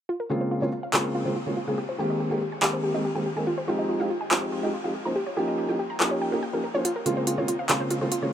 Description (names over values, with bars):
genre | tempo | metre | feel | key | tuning
future bass | 142 BPM | 4/4 | half-time | unclear | A4 = 442 Hz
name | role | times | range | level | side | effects
wide unison pluck | arpeggios | 0.1-8.3 s | F4 to Bb5 | -30 LUFS | equal | cassette tape, tape echo
felt-muted upright piano | accompaniment | 0.3-8.3 s | Db3 to C5 | -26 LUFS | equal | tape echo
big-room dance drum kit | drums | 0.9-8.2 s | handclaps, hi-hat | -30 LUFS | equal | none
room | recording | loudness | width
moderate shimmer reverb, RT60 8.1 s | none | -24 LUFS | side -10 dB against mid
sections
0.1-8.3 A section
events
filter sweep on synth arpeggio sound 0.1-8.3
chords
0.1 Bbm9; 1.8 Abmaj7; 3.5 Fm7; 5.0 Eb7; 6.9 Bbm9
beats
| 0.09 0.51 0.94 1.36 | 1.78 2.20 2.63 3.05 | 3.47 3.89 4.32 4.74 | 5.16 5.58 6.01 6.43 | 6.85 7.27 7.70 8.12